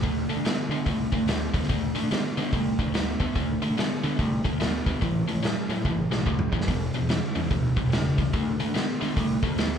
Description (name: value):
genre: blues rock power trio and southern rock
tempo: 144 BPM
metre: 4/4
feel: swing 63% on 8ths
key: unclear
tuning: A4 = 444 Hz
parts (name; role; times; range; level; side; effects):
- distorted electric guitar; riff; 0.0-9.8 s; E2 to B3; -27 LUFS; equal; overdrive, slapback echo
- growling picked electric bass; bass; 0.0-9.8 s; E1 to D3; -31 LUFS; equal; overdrive
- raw garage drum kit; drums; 0.0-9.7 s; hi-hat, kick drum, snare drum, toms; -27 LUFS; equal; none
room: light reverb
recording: live gig heard through the venue's PA, club ambience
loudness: -23 LUFS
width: side -8 dB against mid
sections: 0.0-9.8 A section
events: drum fill 5.9-6.7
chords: 0.0 D5; 5.0 A7; 6.7 E5; 8.3 D5